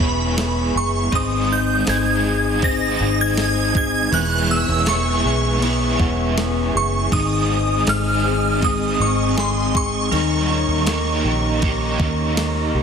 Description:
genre	dream pop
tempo	80 BPM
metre	4/4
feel	straight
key	unclear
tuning	A4 = 436 Hz
part	shimmering bell with halo	melody	0.0-12.3 s	B5 to Bb6	-23 LUFS	right 2 dB	ensemble chorus, phaser, digital delay
part	crunchy overdriven guitar	accompaniment	0.0-12.8 s	Eb3 to C#5	-25 LUFS	right 3 dB	tremolo, ensemble chorus
part	percussive tonewheel organ	sustained chords	0.0-12.8 s	C4 to Eb6	-27 LUFS	right 1 dB	fast rotary speaker
part	mellow electric guitar	arpeggios	0.0-12.8 s	Eb3 to G#4	-23 LUFS	left 5 dB	wide subtle chorus, digital delay
part	vintage muted fingered electric bass	bass	0.0-12.8 s	E1 to Eb2	-23 LUFS	right 1 dB	none
part	clean 12-bit digital drum machine	drums	0.0-12.5 s	kick drum, ride cymbal, snare drum, tambourine	-26 LUFS	right 1 dB	none
part	celesta	texture	1.1-10.5 s	Gb5 to C6	-38 LUFS	right 3 dB	none
room	light reverb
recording	dense, heavily limited modern master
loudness	-17 LUFS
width	side -6 dB against mid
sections	0.0-12.8 A section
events	none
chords	0.0 E6; 1.1 Ab; 4.1 E6; 7.1 Ab; 10.1 Eb7

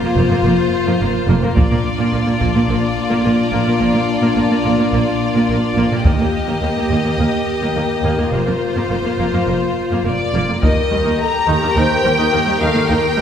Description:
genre	cinematic, epic orchestral film score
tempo	106 BPM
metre	4/4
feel	straight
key	Bb major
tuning	A4 = 440 Hz
part	clear symphonic violin section	melody	0.0-13.2 s	C5 to Bb5	-22 LUFS	left 2 dB	none
part	warm chamber violin section	second line	0.0-13.2 s	F4 to Bb4	-23 LUFS	left 4 dB	none
part	clear symphonic viola section	accompaniment	0.0-13.2 s	Eb3 to Eb4	-23 LUFS	right 1 dB	none
part	warm French horn section	sustained chords	0.0-13.2 s	Bb3 to C5	-21 LUFS	left 3 dB	none
part	rich symphonic cello section	bass	0.0-13.2 s	Eb2 to Bb2	-21 LUFS	right 2 dB	none
part	clear symphonic double bass section	bass	0.2-13.2 s	F1 to Eb2	-22 LUFS	right 2 dB	none
part	solo taiko drums	drums	1.6-2.7, 6.0-7.1, 10.6-11.7 s	none	-19 LUFS	equal	none
room	wet scoring stage reverb, RT60 1.9 s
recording	recorded in a church or concert hall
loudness	-14 LUFS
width	side -8 dB against mid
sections	0.0-10.6 A section; 10.6-13.2 B section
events	build-up 0.0-10.6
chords	0.0 Fsus4; 1.6 Bb; 6.0 Eb; 8.3 Fsus4; 10.6 Eb

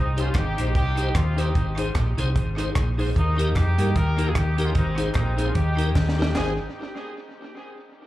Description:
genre	ska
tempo	150 BPM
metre	4/4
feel	swing 56% on 8ths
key	Ab major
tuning	A4 = 440 Hz
part	clear horn section	melody	0.0-6.6 s	Bb3 to Bb4	-30 LUFS	equal	tape echo, plate reverb, slapback echo
part	hollow-body short-scale fingered electric bass	bass	0.0-6.6 s	Ab1 to G2	-23 LUFS	equal	none
part	vintage hollow-body jazz guitar	accompaniment	0.2-6.5 s	Bb3 to C5	-32 LUFS	equal	tape echo, plate reverb, slapback echo
part	tonewheel organ	stabs	0.2-6.5 s	Eb4 to C5	-33 LUFS	left 2 dB	overdrive, chorus vibrato, slow rotary speaker, tape echo, plate reverb, slapback echo
part	compact cocktail drum kit	drums	0.2-6.5 s	hi-hat, kick drum, rim click, snare drum	-26 LUFS	equal	tape echo
part	group handclap	percussion	0.3-6.6 s	none	-40 LUFS	left 2 dB	slapback echo
room	little or no reverb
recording	live gig heard through the venue's PA, club reverb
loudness	-20 LUFS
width	side -15 dB against mid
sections	0.0-6.4 A section; 6.4-8.0 B section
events	drum fill 6.0-6.4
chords	0.0 Cm; 1.6 Ab; 3.2 Eb; 4.8 Ab; 5.6 Eb; 6.4 Ab

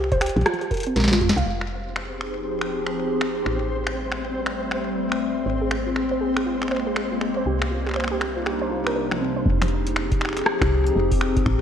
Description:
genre	IDM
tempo	120 BPM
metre	4/4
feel	swing 62% on 16ths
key	F dorian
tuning	A4 = 440 Hz
part	warbly dusty pluck	arpeggios	0.0-1.4, 5.5-9.4 s	F3 to F5	-27 LUFS	right 2 dB	chorus, ping-pong delay
part	woody FM bass	bass	0.0-11.6 s	F1 to F2	-27 LUFS	equal	none
part	booming analog drum machine	drums	0.0-11.6 s	finger snaps, hi-hat, rim click, snare drum, toms	-27 LUFS	equal	none
part	electronic kick drum	drums	0.1-1.3, 9.5-11.6 s	none	-25 LUFS	equal	none
part	warbly tape-like pad	sustained chords	2.1-11.6 s	C3 to Ab4	-25 LUFS	left 2 dB	chorus, built-in reverb, phaser
part	flickering grainy texture	texture	1.8-9.5 s	C4 to C5	-32 LUFS	left 1 dB	built-in reverb
room	moderate echo chamber reverb, RT60 1.7 s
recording	worn, warbling old tape, cassette tape, warbly pitch drift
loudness	-21 LUFS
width	side -8 dB against mid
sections	0.0-1.5 A section; 1.5-9.5 B section; 9.5-11.6 C section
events	drum fill 1.0-1.5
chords	0.0 C5; 1.5 Fm7; 3.5 Am7; 5.5 Abadd9; 7.5 Cm7; 9.5 Fm7

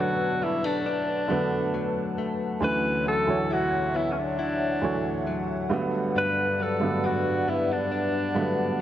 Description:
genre	R&B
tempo	68 BPM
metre	4/4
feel	straight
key	unclear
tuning	A4 = 442 Hz
part	breathy alto saxophone	melody	0.0-8.8 s	C#4 to B4	-27 LUFS	equal	analog delay
part	dark baby grand piano	accompaniment	0.0-8.8 s	D2 to C#5	-28 LUFS	right 3 dB	none
part	hollow soft pad	sustained chords	0.0-8.8 s	B4 to A5	-32 LUFS	left 1 dB	chorus
part	direct-recorded clean electric guitar	arpeggios	0.0-8.8 s	G2 to E4	-31 LUFS	left 4 dB	spring reverb, analog delay
room	moderate echo chamber reverb, RT60 1.8 s, small room reverb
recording	echo-heavy mix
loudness	-24 LUFS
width	side -11 dB against mid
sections	0.0-8.8 A section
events	none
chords	0.0 Bm7; 2.6 Dmaj9; 5.7 Gmaj7

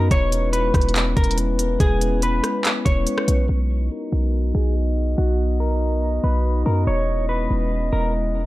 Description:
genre	hip hop, atmospheric cloud-rap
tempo	142 BPM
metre	4/4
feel	half-time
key	B major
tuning	A4 = 440 Hz
part	clean electric guitar	melody	0.0-8.1 s	F#4 to C#5	-27 LUFS	equal	low-pass filter, digital delay
part	glass harmonica	sustained chords	0.0-8.5 s	G#3 to D#5	-25 LUFS	left 2 dB	sidechain pumping, low-pass filter
part	warm 808-style bass	bass	0.0-8.5 s	E1 to F#2	-21 LUFS	equal	none
part	smooth R&B drum kit	drums	0.1-3.4 s	handclaps, hi-hat, kick drum, rim click	-20 LUFS	equal	none
room	light reverb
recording	none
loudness	-18 LUFS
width	side -17 dB against mid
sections	0.0-3.5 A section; 3.5-8.5 B section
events	filter sweep 3.5-8.5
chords	0.1 E6; 3.5 Bmaj7; 6.9 E6

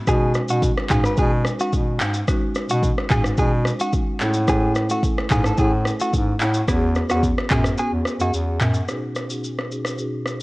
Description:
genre	afrobeats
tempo	109 BPM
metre	4/4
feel	straight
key	B mixolydian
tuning	A4 = 435 Hz
part	direct-recorded clean electric guitar	melody	0.1-8.3 s	F#4 to B4	-26 LUFS	equal	tape echo
part	marimba with medium mallets	accompaniment	0.1-10.4 s	B2 to A4	-26 LUFS	equal	low-pass filter
part	warm bass clarinet	bass	0.1-8.8 s	E2 to B2	-21 LUFS	equal	none
part	afro-pop drum kit	drums	0.1-10.4 s	handclaps, kick drum, rim click, shaker, toms	-22 LUFS	equal	overdrive
room	little or no reverb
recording	worn, warbling old tape, cassette tape, warbly pitch drift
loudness	-18 LUFS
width	side -22 dB against mid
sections	0.0-8.9 A section; 8.9-10.4 B section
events	break 7.8-8.9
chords	0.1 B6; 4.2 A; 6.7 E6; 8.9 B6

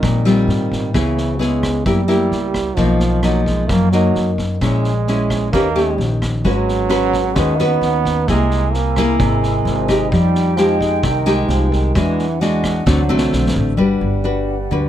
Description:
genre	bossa nova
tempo	131 BPM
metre	4/4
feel	straight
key	unclear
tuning	A4 = 439 Hz
part	breathy trombone	second line	0.0-14.9 s	Eb3 to Cb4	-22 LUFS	right 7 dB	none
part	nylon-string guitar	accompaniment	0.0-14.9 s	F#2 to Cb5	-17 LUFS	left 2 dB	none
part	upright bass	bass	0.0-14.9 s	G1 to Ab2	-20 LUFS	equal	none
part	vintage drum kit	drums	0.0-13.6 s	kick drum, rim click, snare drum	-24 LUFS	equal	none
part	mellow hollow small flute group	sustained chords	6.5-14.9 s	Db4 to Bb5	-25 LUFS	right 1 dB	none
room	little or no reverb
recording	close, detailed microphones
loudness	-14 LUFS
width	side -11 dB against mid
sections	0.0-13.8 A section; 13.8-14.9 B section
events	drum fill 12.9-13.8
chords	0.0 Eb69; 0.9 Dbm7; 1.9 Gb7b9; 2.8 Bmaj7#11; 4.6 Bbm7b5; 5.5 Eb7b13; 6.5 Abm11; 8.3 C7alt; 10.1 Fm9; 12.0 E9; 12.9 D7; 13.8 Gmaj7

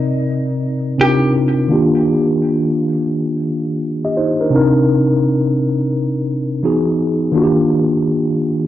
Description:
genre	hip hop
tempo	85 BPM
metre	4/4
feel	swing 65% on 16ths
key	unclear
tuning	A4 = 444 Hz
part	mellow tine electric piano	accompaniment	0.0-8.7 s	C3 to Eb5	-14 LUFS	equal	medium stereo tremolo, cassette tape, low-pass filter, plate reverb
part	vintage hollow-body jazz guitar	melody	1.0-1.3 s	G4	-21 LUFS	right 1 dB	plate reverb, analog delay
room	wet studio reverb, RT60 0.5 s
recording	nothing above 7.5 kHz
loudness	-14 LUFS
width	side -13 dB against mid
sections	0.0-1.7 A section; 1.7-8.7 B section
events	filter sweep on tine electric piano 1.7-8.7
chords	0.0 Cm7; 1.0 Cm11; 1.7 Ebmaj7; 4.5 Cm7; 6.6 Emaj7; 7.3 Ebmaj7

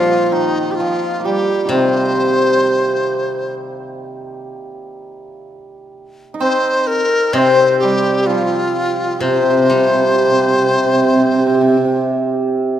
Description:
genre	chinese traditional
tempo	64 BPM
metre	4/4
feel	rubato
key	C yu mode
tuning	A4 = 440 Hz
part	reedy large dizi	melody	0.0-12.1 s	Eb4 to Eb5	-17 LUFS	left 1 dB	none
part	hammered dulcimer	second line	0.0-12.8 s	C3 to Eb4	-17 LUFS	right 3 dB	none
part	steel-string zither	accompaniment	0.0-12.1 s	Bb2 to G3	-19 LUFS	left 5 dB	none
room	moderate concert hall reverb, RT60 2.5 s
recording	none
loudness	-13 LUFS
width	side -10 dB against mid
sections	0.0-12.8 A section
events	none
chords	none

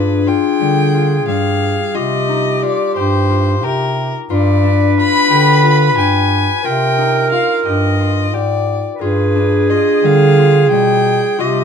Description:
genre	contemporary instrumental, chamber music in an uneven meter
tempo	178 BPM (eighths)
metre	7/8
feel	straight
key	unclear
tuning	A4 = 440 Hz
part	rich violin	melody	0.0-11.6 s	Bb4 to B5	-19 LUFS	left 5 dB	none
part	warm clarinet	second line	0.0-11.6 s	G4 to B4	-16 LUFS	right 4 dB	none
part	concert harp	arpeggios	0.0-11.6 s	G3 to G4	-19 LUFS	left 10 dB	none
part	mellow bass clarinet	bass	0.0-11.6 s	G2 to D3	-16 LUFS	right 1 dB	none
room	moderate studio reverb, RT60 0.7 s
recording	dark, warm production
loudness	-11 LUFS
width	side -7 dB against mid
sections	0.0-11.6 A section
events	none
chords	0.0 G7(no3); 2.0 Cm; 4.3 G7b9; 6.6 Cm7; 9.0 G7b9

